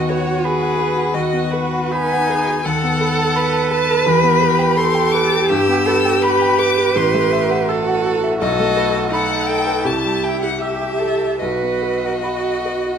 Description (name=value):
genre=classical, slow romantic movement for piano quartet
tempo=82 BPM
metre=4/4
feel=uneven beats, rubato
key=E minor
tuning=A4 = 441 Hz
part: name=rich violin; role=melody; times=0.0-13.0 s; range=B4 to E6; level=-21 LUFS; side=left 8 dB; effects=none
part: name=warm cello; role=second line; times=0.0-13.0 s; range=D#4 to B4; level=-21 LUFS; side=right 6 dB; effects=none
part: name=clear viola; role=accompaniment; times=0.0-13.0 s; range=D#4 to A4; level=-22 LUFS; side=right 3 dB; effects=none
part: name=warm grand piano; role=accompaniment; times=0.0-13.0 s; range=A1 to E6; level=-20 LUFS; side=left 2 dB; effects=none
room=moderate recital hall reverb, RT60 1.4 s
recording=close, detailed microphones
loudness=-15 LUFS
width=side -7 dB against mid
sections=0.0-13.0 A section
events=none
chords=0.0 B/D#; 2.6 B7/D#; 4.1 Em; 5.5 Em/G; 7.0 F#m7b5/A; 8.4 B7; 9.8 C; 11.4 B